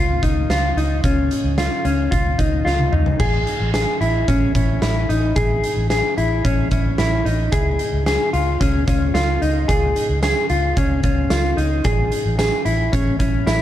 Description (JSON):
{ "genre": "dream pop", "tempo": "111 BPM", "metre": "4/4", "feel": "straight", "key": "unclear", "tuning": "A4 = 440 Hz", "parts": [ { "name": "mellow electric guitar", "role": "arpeggios", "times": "0.0-13.6 s", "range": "Db4 to G#4", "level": "-20 LUFS", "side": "left 1 dB", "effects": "lush chorus, tape echo" }, { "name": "vintage muted fingered electric bass", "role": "bass", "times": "0.0-13.6 s", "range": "A1 to Db2", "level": "-21 LUFS", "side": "equal", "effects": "none" }, { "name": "oversized low-tuned drum kit", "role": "drums", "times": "0.2-13.6 s", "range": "crash cymbal, hi-hat, kick drum, snare drum, tambourine, toms", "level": "-22 LUFS", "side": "equal", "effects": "none" } ], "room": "light reverb", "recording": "dark, warm production", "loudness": "-16 LUFS", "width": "side -12 dB against mid", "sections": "0.0-3.2 A section; 3.2-13.6 A section", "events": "drum fill 2.7-3.2", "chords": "0.0 Dbadd9; 3.2 Amaj7; 7.5 Dbadd9; 11.8 Amaj7" }